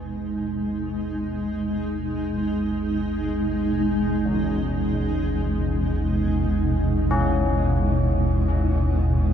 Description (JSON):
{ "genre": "dark ambient drone", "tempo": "free time", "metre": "none", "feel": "none", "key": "unclear", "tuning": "A4 = 442 Hz", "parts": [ { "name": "granular cloud pad", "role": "sustained chords", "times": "0.0-9.3 s", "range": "B2 to D#4", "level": "-24 LUFS", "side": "right 1 dB", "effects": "built-in reverb" }, { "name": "carillon bells", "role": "arpeggios", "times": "0.0-9.3 s", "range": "C#3 to G#4", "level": "-29 LUFS", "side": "left 3 dB", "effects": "tape echo, shimmer reverb" }, { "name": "deep rumbling drone", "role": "drone", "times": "0.0-9.3 s", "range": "G#1 to D#2", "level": "-25 LUFS", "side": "equal", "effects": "built-in reverb, wide subtle chorus" } ], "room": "wet cathedral reverb, RT60 4.7 s", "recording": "none", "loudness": "-21 LUFS", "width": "side -8 dB against mid", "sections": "0.0-9.3 A section", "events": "fade-in on synth drone 0.0-9.3; fade-in on ambient pad 0.0-9.3; fade-in on church bells 0.0-9.3", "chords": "0.0 G#m", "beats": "free time" }